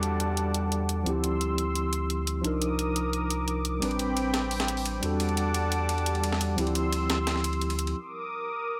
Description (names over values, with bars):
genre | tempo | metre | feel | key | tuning
liquid drum and bass | 174 BPM | 4/4 | straight | unclear | A4 = 441 Hz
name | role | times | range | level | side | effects
tine electric piano | accompaniment | 0.0-8.0 s | F3 to B4 | -33 LUFS | equal | medium tremolo, delay
warm analog pad | sustained chords | 0.0-8.8 s | G3 to E6 | -34 LUFS | equal | chorus
sub bass with octave | bass | 0.0-7.9 s | A1 to E2 | -33 LUFS | equal | none
electronic hi-hat | drums | 0.0-7.9 s | none | -35 LUFS | equal | none
downlifter | sound effects | 0.0-1.1 s | none | -50 LUFS | equal | none
breakbeat sampler-style drum kit | drums | 3.8-8.0 s | hi-hat, ride cymbal, snare drum | -36 LUFS | equal | high-pass filter on hats, high-pass filter on cymbals, high-pass filter on snare
room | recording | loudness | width
light reverb | none | -28 LUFS | mono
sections
0.0-8.8 A section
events
break 8.0-8.8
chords
0.0 Em11; 1.1 Dm11; 2.4 Cm11; 3.8 Am11; 5.0 Em11; 6.6 Dm11; 8.0 Bbadd11